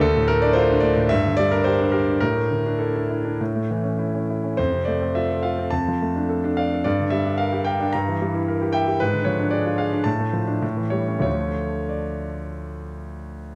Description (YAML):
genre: classical, romantic character piece for solo piano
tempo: 91-118 BPM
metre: 4/4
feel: rubato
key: D minor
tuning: A4 = 442 Hz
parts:
  - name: clear concert grand piano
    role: solo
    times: 0.0-13.6 s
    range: D2 to Bb5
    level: -22 LUFS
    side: equal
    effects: none
room: moderate scoring stage reverb, RT60 2.0 s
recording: close, detailed microphones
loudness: -22 LUFS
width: mono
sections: 0.0-13.6 A section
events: none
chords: 0.0 Dm; 1.1 G5; 2.2 Asus4; 3.4 A; 4.6 F; 5.7 Dm/F; 6.8 Gm; 7.9 Edim/G; 9.0 G#dim7; 10.1 Dm/A; 10.6 A7; 11.3 Dm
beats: | 0.01 0.55 1.10 1.65 | 2.21 2.80 3.40 3.99 | 4.58 5.15 5.71 6.29 | 6.85 7.38 7.93 8.48 | 8.99 9.51 10.06 10.63 | 11.25 11.91 12.57 13.22